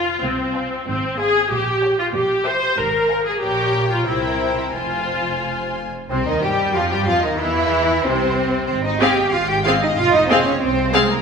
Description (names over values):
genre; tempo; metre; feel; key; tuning
quick classical-period movement for string orchestra; 93 BPM; 2/4; rubato; F minor; A4 = 440 Hz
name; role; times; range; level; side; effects
warm symphonic violin section; melody; 0.0-11.1 s; C4 to Ab5; -24 LUFS; left 4 dB; none
warm symphonic violin section; second line; 0.0-11.2 s; Ab4 to G5; -24 LUFS; left 3 dB; none
rich symphonic viola section; accompaniment; 0.0-11.1 s; C3 to C5; -20 LUFS; left 1 dB; none
warm symphonic cello section; bass; 0.0-11.2 s; C2 to G4; -23 LUFS; right 4 dB; none
warm symphonic double bass section; bass; 0.0-11.1 s; F1 to G2; -27 LUFS; right 4 dB; none
room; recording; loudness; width
wet concert hall reverb, RT60 2.2 s; minimal, uncompressed stereo recording; -16 LUFS; side -6 dB against mid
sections
0.0-6.1 A section; 6.1-11.2 B section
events
none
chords
0.0 Fm; 0.9 Fm/Ab; 1.5 Gdim/Bb; 2.2 C7/Bb; 2.8 Fm/Ab; 3.4 Gdim/Bb; 4.1 C7; 4.7 Fm; 6.1 F5/C; 7.4 C/E; 8.7 Fm/Ab; 10.0 Fm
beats
0.23 | 0.88 1.52 | 2.15 2.79 | 3.42 4.08 | 4.75 5.43 | 6.11 6.76 | 7.41 8.05 | 8.70 9.34 | 9.98 10.62